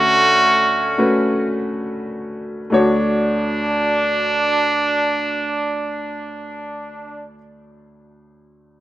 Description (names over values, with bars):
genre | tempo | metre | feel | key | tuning
gospel | 32-41 BPM (dotted quarters) | 6/8 | straight | D major | A4 = 440 Hz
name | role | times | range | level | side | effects
clear horn section | melody | 0.0-7.2 s | A3 to F#4 | -17 LUFS | right 1 dB | none
warm upright piano | accompaniment | 0.0-8.8 s | D2 to C#5 | -20 LUFS | left 1 dB | none
room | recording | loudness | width
light reverb, small room ambience | rough home demo mix | -16 LUFS | side -15 dB against mid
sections
0.0-2.7 A section; 2.7-6.5 B section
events
slowing down 0.0-2.7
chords
0.0 Dmaj7